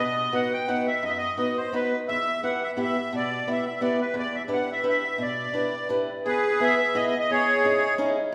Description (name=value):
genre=musette waltz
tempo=173 BPM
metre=3/4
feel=straight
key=E minor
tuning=A4 = 440 Hz
part: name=accordion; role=melody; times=0.0-8.0 s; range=G#4 to G5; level=-27 LUFS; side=equal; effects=light tremolo tuning
part: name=fingerpicked swing-style acoustic guitar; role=accompaniment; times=0.0-8.3 s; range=E2 to B4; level=-29 LUFS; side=equal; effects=none
room=wet recital hall reverb, RT60 1.8 s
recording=recorded in a church or concert hall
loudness=-25 LUFS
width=mono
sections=0.0-6.3 A section; 6.3-8.3 B section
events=none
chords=0.0 B; 2.1 Em; 4.2 Em7; 6.3 E; 7.3 C#madd9/E